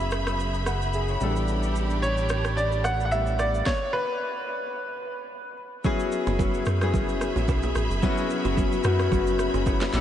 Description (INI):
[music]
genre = amapiano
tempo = 110 BPM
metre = 4/4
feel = swing 55% on 16ths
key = unclear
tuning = A4 = 439 Hz
[part]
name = clear grand piano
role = melody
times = 0.0-5.5 s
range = B4 to F#5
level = -29 LUFS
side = right 1 dB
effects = tape echo
[part]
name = warm grand piano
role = accompaniment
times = 0.0-10.0 s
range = F#3 to F#5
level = -28 LUFS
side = left 3 dB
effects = analog chorus
[part]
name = clear studio string section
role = sustained chords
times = 0.0-10.0 s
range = D4 to B5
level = -33 LUFS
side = equal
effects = sidechain pumping
[part]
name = fat analog bass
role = bass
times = 0.0-3.6 s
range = F#1 to A1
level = -27 LUFS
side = equal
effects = none
[part]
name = afro-pop drum kit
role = drums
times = 0.0-10.0 s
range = kick drum, rim click, shaker, snare drum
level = -30 LUFS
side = right 1 dB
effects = vintage 12-bit sampler grit
[part]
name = congas and bongos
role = percussion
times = 5.8-9.9 s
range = none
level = -34 LUFS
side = right 7 dB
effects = none
[part]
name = deep log drum bass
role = bass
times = 6.3-10.0 s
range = F#1 to F#2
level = -27 LUFS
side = equal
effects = none
[sound]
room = moderate huge ambient reverb, RT60 4.3 s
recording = dreamy mix soaked in reverb, nothing above 10.8 kHz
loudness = -23 LUFS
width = side -10 dB against mid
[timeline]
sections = 0.0-5.8 A section; 5.8-10.0 B section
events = stop 3.7-5.8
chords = 0.0 F#9sus4; 1.2 A9sus4; 3.7 N.C.; 5.8 F#9sus4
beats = 0.39 0.94 | 1.48 2.03 2.57 3.12 | 3.66 4.21 4.75 5.30 | 5.85 6.39 6.94 7.48 | 8.03 8.57 9.12 9.66